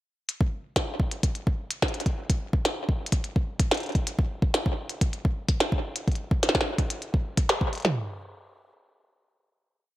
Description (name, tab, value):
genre	IDM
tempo	127 BPM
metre	4/4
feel	straight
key	none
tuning	none
part	glitchy drum kit	drums	0.3-7.8 s	hi-hat, snare drum	-27 LUFS	equal	studio reverb, analog delay
part	glitchy drum kit	drums	0.4-8.0 s	kick drum, snare drum, toms	-25 LUFS	equal	studio reverb
room	moderate spring reverb, RT60 2.5 s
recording	echo-heavy mix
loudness	-24 LUFS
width	side -16 dB against mid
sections	0.3-7.8 groove; 7.8-10.0 final hit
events	none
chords	none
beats	| 0.29 0.76 1.23 1.71 | 2.18 2.65 3.12 3.60 | 4.07 4.54 5.01 5.49 | 5.96 6.43 6.90 7.38 | 7.85